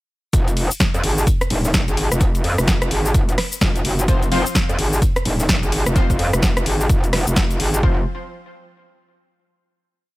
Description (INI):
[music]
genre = bass house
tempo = 128 BPM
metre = 4/4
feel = swing 61% on 16ths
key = F phrygian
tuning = A4 = 441 Hz
[part]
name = metallic wobble bass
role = bass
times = 0.3-8.1 s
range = Eb1 to F2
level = -20 LUFS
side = equal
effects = distortion, chorus, overdrive, sidechain pumping
[part]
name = breakbeat sampler-style drum kit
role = drums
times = 0.3-7.7 s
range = hi-hat, snare drum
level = -33 LUFS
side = equal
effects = none
[part]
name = electronic kick drum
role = drums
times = 0.3-7.9 s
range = none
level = -19 LUFS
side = equal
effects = none
[part]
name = house drum kit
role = drums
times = 0.3-7.8 s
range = hi-hat, rim click, shaker, snare drum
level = -22 LUFS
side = equal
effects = none
[part]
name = orchestra-hit-like synth stab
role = stabs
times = 4.1-8.0 s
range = F3 to C5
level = -25 LUFS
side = left 2 dB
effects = built-in reverb, vintage 12-bit sampler grit, sidechain pumping, tape echo
[sound]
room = little or no reverb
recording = none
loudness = -16 LUFS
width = side -19 dB against mid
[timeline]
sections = 0.3-7.8 drop; 7.8-9.7 final chord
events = drop 0.3-7.8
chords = 0.3 F5